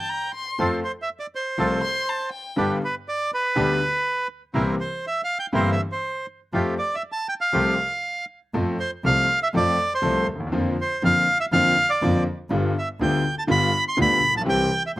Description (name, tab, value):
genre	tango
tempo	121 BPM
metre	4/4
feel	rubato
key	F major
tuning	A4 = 443 Hz
part	bandoneon	melody	0.0-15.0 s	B4 to C6	-22 LUFS	right 1 dB	none
part	warm violin	second line	0.0-2.7 s	G5 to C6	-30 LUFS	left 4 dB	none
part	clear concert grand piano	accompaniment	0.6-15.0 s	G1 to A4	-24 LUFS	left 1 dB	none
part	bandoneon	stabs	0.6-7.7 s	A3 to B4	-26 LUFS	right 1 dB	none
part	warm double bass	bass	0.6-15.0 s	G1 to F2	-28 LUFS	right 1 dB	none
room	little or no reverb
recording	recorded outdoors, with no room sound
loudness	-20 LUFS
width	side -17 dB against mid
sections	0.0-8.5 A section; 8.5-15.0 B section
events	none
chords	0.0 C5; 0.6 F; 2.6 G; 4.6 C7; 6.5 Fadd9; 8.5 F; 10.5 Bb/F; 12.5 G7; 14.5 C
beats	0.10 | 0.60 1.09 1.59 2.08 | 2.58 3.07 3.57 4.06 | 4.55 5.04 5.54 6.04 | 6.53 7.03 7.53 8.04 | 8.54 9.04 9.54 10.03 | 10.53 11.02 11.52 12.01 | 12.50 12.99 13.49 13.98 | 14.47 14.97